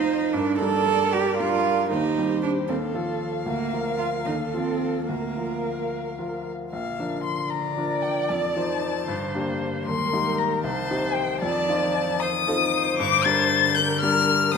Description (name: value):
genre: quick classical-period movement for piano quartet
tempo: 77 BPM (dotted quarters)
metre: 6/8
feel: straight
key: Bb major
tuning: A4 = 438 Hz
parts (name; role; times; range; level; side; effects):
- warm violin; melody; 0.0-14.6 s; C5 to A6; -26 LUFS; left 8 dB; none
- warm cello; second line; 0.0-14.6 s; D3 to A4; -27 LUFS; right 6 dB; none
- clear baby grand piano; accompaniment; 0.0-14.6 s; Bb1 to C5; -28 LUFS; left 2 dB; none
- rich viola; accompaniment; 0.0-14.6 s; G4 to D5; -29 LUFS; right 2 dB; none
room: wet scoring stage reverb, RT60 1.7 s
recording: none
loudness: -22 LUFS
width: side -6 dB against mid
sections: 0.0-6.7 A section; 6.7-14.6 A section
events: none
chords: 0.3 Gm; 1.9 Cm/Eb; 2.7 F7/Eb; 3.5 Bb/D; 4.3 F7/Eb; 5.1 Bb/D; 6.7 Bb; 8.3 F7; 9.1 Gm; 9.9 Eb; 10.6 Cm; 11.4 F7; 13.0 Gm